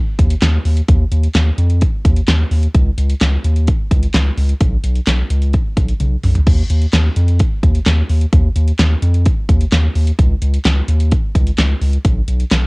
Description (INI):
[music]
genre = synth-pop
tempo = 129 BPM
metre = 4/4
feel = straight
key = unclear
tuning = A4 = 441 Hz
[part]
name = round analog bass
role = bass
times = 0.2-12.7 s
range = B1 to F2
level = -14 LUFS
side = equal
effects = none
[part]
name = pop drum kit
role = drums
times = 0.2-12.6 s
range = crash cymbal, handclaps, hi-hat, kick drum, snare drum, toms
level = -15 LUFS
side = equal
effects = none
[sound]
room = little or no reverb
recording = home recording on cassette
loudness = -12 LUFS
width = side -29 dB against mid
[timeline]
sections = 0.0-12.7 A section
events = drum fill 6.0-6.5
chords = none